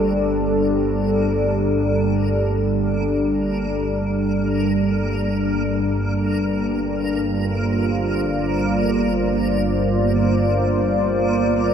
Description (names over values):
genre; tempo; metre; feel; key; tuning
dark ambient drone; free time; none; none; G minor; A4 = 440 Hz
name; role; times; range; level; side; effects
dark analog pad; sustained chords; 0.0-11.7 s; G2 to D5; -20 LUFS; equal; chorus
tubular bells; arpeggios; 0.0-5.8 s; none; barely audible; none; none
analog drone; drone; 0.0-11.7 s; G1 to G2; -22 LUFS; equal; chorus
backwards swelling texture; texture; 0.0-11.7 s; Bb3; -31 LUFS; right 2 dB; built-in reverb, ensemble chorus
room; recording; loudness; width
wet plate reverb, RT60 3.3 s; dreamy mix soaked in reverb; -18 LUFS; side -8 dB against mid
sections
0.0-11.7 A section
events
none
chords
0.0 Gmadd9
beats
free time